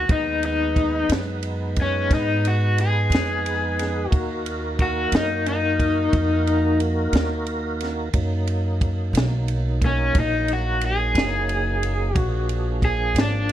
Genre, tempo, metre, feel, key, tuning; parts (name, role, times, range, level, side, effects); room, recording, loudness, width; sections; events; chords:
slow blues; 60 BPM (dotted quarters); 12/8; straight; Eb harmonic minor; A4 = 440 Hz
raw garage guitar; melody; 0.0-13.5 s; Db4 to Ab4; -23 LUFS; left 2 dB; overdrive, tremolo
tonewheel organ; sustained chords; 0.0-13.5 s; F3 to Cb5; -29 LUFS; right 2 dB; chorus vibrato, slow rotary speaker
upright bass; bass; 0.0-13.5 s; Gb1 to Ab2; -24 LUFS; equal
compact cocktail drum kit; drums; 0.1-13.5 s; kick drum, ride cymbal, snare drum; -25 LUFS; equal
moderate club reverb, RT60 0.5 s; -19 LUFS; side -12 dB against mid
0.0-13.5 A section
overdriven electric guitar solo 0.0-13.5
0.1 Abm; 4.1 Ebm; 12.2 Bb7